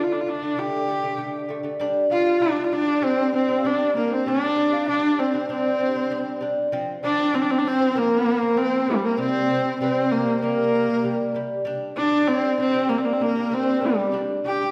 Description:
mongolian traditional, Mongolian folk; 97 BPM; 4/4; straight; G minor; A4 = 440 Hz
clear horsehead fiddle; melody; 0.0-14.7 s; G3 to G4; -24 LUFS; equal
lute; arpeggios; 0.0-14.7 s; C3 to D4; -29 LUFS; equal
large dizi; second line; 2.1-14.7 s; G4 to G5; -31 LUFS; equal
wet recital hall reverb, RT60 1.7 s; -22 LUFS; mono
0.0-1.8 A section; 1.8-14.7 B section
0.0 D5; 1.8 G5; 6.7 F5; 9.2 C5; 11.7 G5

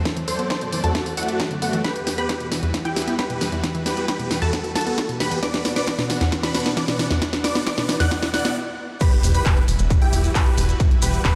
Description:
uplifting trance; 134 BPM; 4/4; straight; E minor; A4 = 440 Hz
supersaw pad; sustained chords; 0.0-11.4 s; E2 to F#5; -34 LUFS; equal; sidechain pumping
unison pluck; arpeggios; 0.1-8.5 s; E2 to E4; -29 LUFS; equal; sidechain pumping, digital delay
electronic kick drum; drums; 0.1-11.3 s; -23 LUFS; equal; distortion, overdrive, high-pass filter on kick
techno drum kit; drums; 0.1-11.3 s; crash cymbal, handclaps, hi-hat, snare drum; -28 LUFS; equal; overdrive, sidechain pumping on hats, sidechain pumping on cymbals
big supersaw lead; melody; 0.3-11.4 s; A3 to F#5; -30 LUFS; equal; phaser, sidechain pumping, low-pass filter, dub echo
unison pluck; second line; 0.3-11.4 s; F#5 to F#6; -34 LUFS; equal; cassette tape, sidechain pumping, digital delay
riser and impact; sound effects; 4.6-10.8 s; -36 LUFS; equal
maracas; percussion; 9.0-11.3 s; -34 LUFS; equal
plucky analog bass; bass; 9.2-11.4 s; E1; -23 LUFS; equal; tube saturation, sidechain pumping
light reverb; played on a big sound system in a bare room, stone room reverb; -22 LUFS; mono
0.0-9.0 A section; 9.0-11.4 B section
build-up 0.0-9.0; drum fill 0.0-8.6; filter sweep on supersaw synth 0.0-9.0; stop 8.6-9.0; drop 9.0-11.4; impact 9.0-10.8
0.0 F#dim; 1.8 Emadd9; 5.4 Bm; 9.0 Emadd9

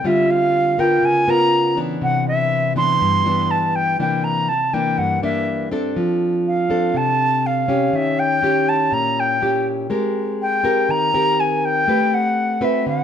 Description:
bossa nova; 122 BPM; 4/4; straight; A4 = 440 Hz
reedy silver concert flute; melody; 0.0-13.0 s; E5 to C6; -19 LUFS; equal
nylon-string guitar; accompaniment; 0.0-13.0 s; G2 to B4; -19 LUFS; equal
moderate large studio reverb, RT60 1.1 s; -16 LUFS; side -8 dB against mid
0.0-13.0 A section
0.0 Dm7; 1.0 C#6; 2.0 Cmaj9; 4.0 C9; 6.0 F6; 7.9 Eb7b9; 9.9 Abmaj9; 11.9 Am9

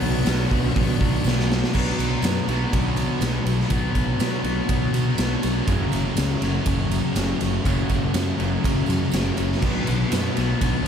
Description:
rock, shoegaze and dream pop; 122 BPM; 4/4; straight; A4 = 440 Hz
overdriven semi-hollow guitar; riff; 0.0-10.9 s; F#2 to F#4; -30 LUFS; right 9 dB; reverse reverb
raw garage guitar; riff; 0.0-10.9 s; F#2 to B3; -30 LUFS; right 1 dB; overdrive
thick fuzz guitar; riff; 0.0-10.9 s; F#2 to B3; -25 LUFS; left 7 dB; distortion, lush chorus
fuzz fingered electric bass; bass; 0.0-10.9 s; F#1 to B2; -26 LUFS; right 1 dB; overdrive
raw garage drum kit; drums; 0.0-10.7 s; crash cymbal, hi-hat, kick drum, ride cymbal, snare drum; -25 LUFS; right 1 dB
tambourine; percussion; 0.3-10.7 s; -44 LUFS; right 14 dB
moderate huge ambient reverb, RT60 8.7 s; dreamy mix soaked in reverb; -20 LUFS; side -8 dB against mid
0.0-1.7 A section; 1.7-10.9 B section
drum fill 1.2-1.7
0.0 Bm; 5.7 F#m; 9.6 Bm

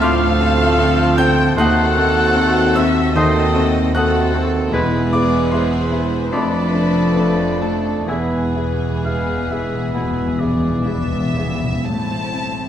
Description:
classical, romantic movement for piano and orchestra; 54-78 BPM; 4/4; rubato; A4 = 439 Hz
clear baby grand piano; melody; 0.0-12.7 s; D2 to G6; -21 LUFS; left 2 dB
warm studio violin section; melody; 0.0-12.7 s; G#4 to A5; -30 LUFS; left 3 dB
clear clarinet; second line; 0.0-10.3 s; D#4 to F4; -29 LUFS; left 2 dB
dark chamber violin section; second line; 0.0-12.7 s; E4 to G5; -26 LUFS; left 3 dB
hollow concert flute; second line; 0.0-10.8 s; G#5 to G6; -25 LUFS; left 2 dB
warm oboe; second line; 0.0-11.9 s; B4 to F5; -29 LUFS; right 1 dB
warm bassoon; accompaniment; 0.0-10.3 s; G#3 to B3; -29 LUFS; right 2 dB
warm symphonic viola section; accompaniment; 0.0-12.7 s; A3 to F#4; -25 LUFS; right 1 dB
bright trombone section; sustained chords; 0.0-11.5 s; D#3 to A3; -26 LUFS; right 4 dB
dark French horn section; sustained chords; 0.0-11.5 s; A3 to F#4; -27 LUFS; left 3 dB
warm trumpet section; stabs; 0.0-11.5 s; A4 to D5; -27 LUFS; right 2 dB
dark studio double bass section; bass; 0.0-12.7 s; E1 to D#2; -23 LUFS; right 2 dB
warm symphonic cello section; bass; 0.0-12.7 s; D2 to A2; -25 LUFS; right 2 dB
timpani; percussion; 4.7-12.7 s; E2 to A2; -25 LUFS; left 1 dB
moderate scoring stage reverb, RT60 1.5 s; -15 LUFS; side -10 dB against mid
0.0-11.9 A section
timpani fill 8.1-11.9
0.0 Dm7; 1.6 D#dim7; 4.7 E; 6.3 Dm/F; 8.1 E; 11.9 Am

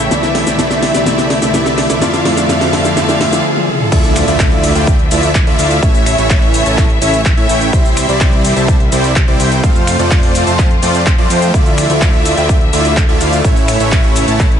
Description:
EDM, festival progressive house; 126 BPM; 4/4; straight; D minor; A4 = 439 Hz
dark concert grand piano; accompaniment; 0.0-3.9 s; C#3 to E4; -20 LUFS; left 4 dB; sidechain pumping, ping-pong delay
clear symphonic string section; sustained chords; 0.0-14.6 s; C3 to F5; -19 LUFS; left 2 dB; sidechain pumping
supersaw chords; riff; 0.0-14.5 s; G3 to A5; -15 LUFS; right 1 dB; sidechain pumping, ping-pong delay
fat analog bass; bass; 0.0-14.6 s; A1 to A2; -18 LUFS; equal; sidechain pumping
riser and impact; sound effects; 0.0-5.8 s; -22 LUFS; right 1 dB
big-room dance drum kit; drums; 0.1-14.6 s; cabasa, crash cymbal, finger snaps, handclaps, hi-hat, snare drum, toms; -19 LUFS; equal; small room ambience
electronic kick drum; drums; 3.9-14.5 s; -12 LUFS; equal; small room ambience
light reverb; nothing above 10.9 kHz; -9 LUFS; side -8 dB against mid
0.0-3.9 A section; 3.9-14.6 B section
build-up 0.0-3.9; drum fill 0.0-3.4, 3.6-3.9; drop 3.9-14.6; impact 3.9-5.8
0.1 C; 2.0 F; 3.9 Dmadd9; 5.8 A; 7.7 C; 9.6 F; 11.5 Dmadd9; 13.4 A

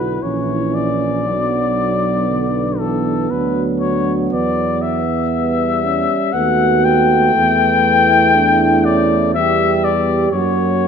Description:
classical, hymn-like piece for brass band; 59 BPM; 3/4; rubato; A4 = 440 Hz
mellow cornet; melody; 0.0-10.9 s; A4 to G5; -17 LUFS; left 5 dB
dark French horn section; second line; 0.0-10.9 s; B3 to G4; -21 LUFS; right 8 dB
mellow euphonium; accompaniment; 0.0-10.9 s; A#3 to E4; -23 LUFS; left 2 dB
mellow trombone; accompaniment; 0.0-10.9 s; D3 to A3; -22 LUFS; right 4 dB
mellow tuba; bass; 0.0-10.9 s; A#1 to F#2; -22 LUFS; right 1 dB
moderate scoring stage reverb, RT60 1.7 s; -13 LUFS; side -7 dB against mid
0.0-10.9 A section
0.2 A#dim; 1.3 Bm; 4.3 Em; 6.3 B7/D#; 7.3 Em7; 10.3 F#

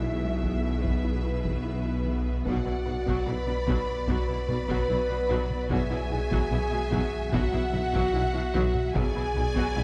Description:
cinematic, hybrid orchestral and electronic film score; 74 BPM; 4/4; straight; A4 = 440 Hz
rich symphonic violin section; melody; 0.0-9.8 s; D5 to E5; -43 LUFS; equal
rich symphonic violin section; second line; 0.0-9.8 s; B4 to B5; -39 LUFS; equal
rich symphonic viola section; accompaniment; 0.0-9.8 s; F#3 to G#4; -39 LUFS; equal
dark French horn section; sustained chords; 0.0-9.8 s; B3 to B4; -34 LUFS; equal
swarming drone; sustained chords; 0.0-9.8 s; F#3 to E5; -43 LUFS; equal
soft round pluck; arpeggios; 0.0-9.8 s; E3 to B4; -41 LUFS; equal
clear symphonic double bass section; bass; 0.0-9.8 s; B1; -37 LUFS; equal
mellow tuba; bass; 0.0-9.8 s; B1; -37 LUFS; equal
pure sine sub bass; bass; 0.0-9.8 s; B1; -35 LUFS; equal
rich symphonic cello section; bass; 0.0-9.8 s; B2; -37 LUFS; equal
taiko ensemble; drums; 0.4-9.8 s; -36 LUFS; equal
moderate concert hall reverb, RT60 2.4 s; dark, warm production; -27 LUFS; mono
0.0-9.8 A section
0.0 Eadd9/B; 2.5 Bm; 5.7 Eadd9/B; 9.0 Bm

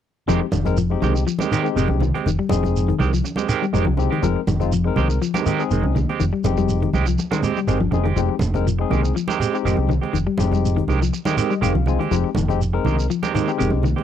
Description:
afrobeat; 122 BPM; 4/4; straight; F minor; A4 = 438 Hz
barky tine electric piano; accompaniment; 0.3-13.9 s; Ab3 to Ab5; -25 LUFS; left 11 dB; auto-pan
semi-hollow electric guitar; arpeggios; 0.3-14.0 s; C3 to G3; -25 LUFS; left 8 dB
clean electric guitar; stabs; 0.3-14.0 s; Eb3 to G4; -24 LUFS; right 10 dB; harmonic tremolo
fingered electric bass; bass; 0.3-13.9 s; F1 to C2; -21 LUFS; right 1 dB
cajon; drums; 0.3-14.0 s; -30 LUFS; equal
shekere; percussion; 0.3-14.0 s; -27 LUFS; right 4 dB
congas; percussion; 0.5-14.0 s; -27 LUFS; right 3 dB
small room ambience; dry, close 1970s-style studio recording; -18 LUFS; side -10 dB against mid
0.3-14.0 A section
tine electric piano fill 11.1-12.1
0.3 Fm9

